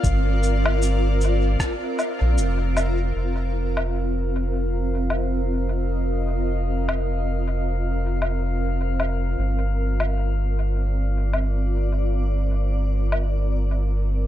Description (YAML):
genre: ambient dub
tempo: 77 BPM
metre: 4/4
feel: swing 58% on 16ths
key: unclear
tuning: A4 = 440 Hz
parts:
  - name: granular cloud pad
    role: sustained chords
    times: 0.0-14.3 s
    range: C4 to Eb5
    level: -28 LUFS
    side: equal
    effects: built-in reverb
  - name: soft dub sub bass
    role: bass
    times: 0.0-14.3 s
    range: F1 to Bb1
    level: -22 LUFS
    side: equal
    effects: tube saturation
  - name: electronic cabasa, woodblock and rim click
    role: drums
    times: 0.0-13.3 s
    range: none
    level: -28 LUFS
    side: left 2 dB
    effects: dub echo
  - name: electronic kick drum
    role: drums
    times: 0.0-1.8 s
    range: none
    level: -24 LUFS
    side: equal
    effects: none
  - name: drifting glass-harmonics texture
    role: texture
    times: 0.0-14.3 s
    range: F5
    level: -34 LUFS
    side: left 4 dB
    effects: chorus, built-in reverb
room: little or no reverb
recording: none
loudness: -21 LUFS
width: side -12 dB against mid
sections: 0.0-3.2 A section; 3.2-14.3 B section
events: none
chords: 0.0 Gm7; 3.2 F5; 9.4 Gm7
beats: | 0.04 0.82 1.60 2.38 | 3.15 3.93 4.71 5.49 | 6.27 7.05 7.83 8.61 | 9.39 10.17 10.95 11.73 | 12.51 13.29 14.06